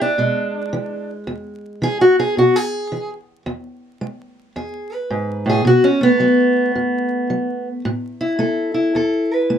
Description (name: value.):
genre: acoustic country blues, solo or duo.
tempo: 109 BPM.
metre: 4/4.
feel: swing 64% on 8ths.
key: E mixolydian.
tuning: A4 = 440 Hz.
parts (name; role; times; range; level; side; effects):
fingerpicked steel-string acoustic guitar; solo; 0.0-9.6 s; E2 to B4; -16 LUFS; equal; none.
room: light reverb.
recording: close, detailed microphones, vinyl crackle.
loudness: -16 LUFS.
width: side -8 dB against mid.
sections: 0.0-9.6 A section.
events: steel-string acoustic guitar solo 0.0-9.6.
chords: 0.0 E7; 5.7 B5; 7.9 A5.